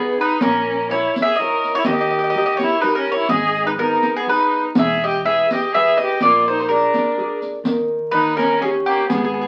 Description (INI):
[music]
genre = italian folk, Italian serenade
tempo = 124 BPM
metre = 3/4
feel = swing 54% on 8ths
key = unclear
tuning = A4 = 440 Hz
[part]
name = mandolin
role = melody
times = 0.0-9.5 s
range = G4 to E5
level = -20 LUFS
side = equal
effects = none
[part]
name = clear violin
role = second line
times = 0.0-9.5 s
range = A#3 to A#4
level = -24 LUFS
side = equal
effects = none
[part]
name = nylon-string guitar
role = accompaniment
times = 0.0-9.5 s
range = D#3 to D5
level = -27 LUFS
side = equal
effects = none
[part]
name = upright bass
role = bass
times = 0.4-9.5 s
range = E1 to D#2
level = -37 LUFS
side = equal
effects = none
[part]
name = riq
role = percussion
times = 0.4-9.3 s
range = none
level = -24 LUFS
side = equal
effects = none
[sound]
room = wet studio ambience, RT60 0.4 s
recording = very old 78 rpm record, vinyl crackle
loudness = -18 LUFS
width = mono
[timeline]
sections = 0.0-9.5 A section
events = none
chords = 0.4 A#dim; 1.9 D#; 3.3 G#m; 4.8 E; 6.2 A#7; 7.7 N.C.; 8.1 D#7